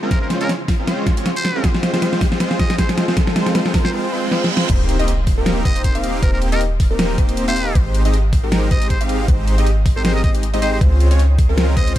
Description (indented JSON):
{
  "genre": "future bass",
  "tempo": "157 BPM",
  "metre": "4/4",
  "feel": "swing 56% on 16ths, half-time",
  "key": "Eb mixolydian",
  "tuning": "A4 = 440 Hz",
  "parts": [
    { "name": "shimmering ambient pad", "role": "sustained chords", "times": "0.0-3.9 s", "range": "Db3 to C5", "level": "-35 LUFS", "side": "equal", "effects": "none" },
    { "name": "supersaw chords", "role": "riff", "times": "0.0-12.0 s", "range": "Ab3 to F5", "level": "-22 LUFS", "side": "equal", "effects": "sidechain pumping, low-pass filter, digital delay" },
    { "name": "riser, reverse cymbal and impact", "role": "sound effects", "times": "0.0-6.2 s", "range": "none", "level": "-29 LUFS", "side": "right 1 dB", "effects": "none" },
    { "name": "trumpet with metal mute", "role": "melody", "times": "0.1-12.0 s", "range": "Bb4 to Eb5", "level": "-28 LUFS", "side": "equal", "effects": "sidechain pumping, ping-pong delay" },
    { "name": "dubstep drum kit", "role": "drums", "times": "0.1-12.0 s", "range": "crash cymbal, hi-hat, snare drum", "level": "-21 LUFS", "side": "equal", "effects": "none" },
    { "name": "electronic kick drum", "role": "drums", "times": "0.1-12.0 s", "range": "none", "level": "-17 LUFS", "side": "equal", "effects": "none" },
    { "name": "wide unison pluck", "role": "arpeggios", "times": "4.7-12.0 s", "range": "Bb4 to F5", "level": "-29 LUFS", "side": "left 2 dB", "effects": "wide subtle chorus, sidechain pumping" },
    { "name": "warm 808-style bass", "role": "bass", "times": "4.7-12.0 s", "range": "Eb1 to Db2", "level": "-18 LUFS", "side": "equal", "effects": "sidechain pumping" }
  ],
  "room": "digital ambience",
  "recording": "dark, warm production",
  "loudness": "-14 LUFS",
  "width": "side -13 dB against mid",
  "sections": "0.0-4.7 A section; 4.7-12.0 B section",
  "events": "build-up 0.0-4.7; drum fill 0.0-3.9, 4.3-4.7; riser 0.0-3.9; reverse cymbal 3.9-4.7; drop 4.7-12.0; impact 4.7-6.2",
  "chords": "0.0 Dbmaj7; 1.6 Fm7; 4.7 Eb6; 7.8 Abmaj7; 10.8 Dbmaj7",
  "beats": "| 0.11 0.49 0.88 1.26 | 1.64 2.02 2.40 2.79 | 3.17 3.55 3.93 4.32 | 4.70 5.08 5.46 5.84 | 6.23 6.61 6.99 7.37 | 7.75 8.14 8.52 8.90 | 9.28 9.66 10.05 10.43 | 10.81 11.19 11.58 11.96"
}